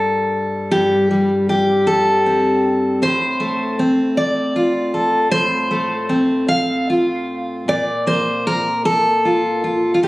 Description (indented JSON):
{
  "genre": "folk, solo fingerstyle acoustic guitar",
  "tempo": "51 BPM (dotted quarters)",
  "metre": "6/8",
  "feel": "rubato",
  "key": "unclear",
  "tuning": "A4 = 440 Hz",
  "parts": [
    { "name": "fingerpicked steel-string acoustic guitar", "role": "solo", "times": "0.0-10.1 s", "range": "G2 to F5", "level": "-15 LUFS", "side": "equal", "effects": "none" }
  ],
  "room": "light reverb",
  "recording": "recorded on a phone in the room, studio reverb, compression",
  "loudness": "-15 LUFS",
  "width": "side -19 dB against mid",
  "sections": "0.0-10.1 A section",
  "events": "none",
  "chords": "0.0 Gsus2; 3.0 F/A; 7.7 Bb5"
}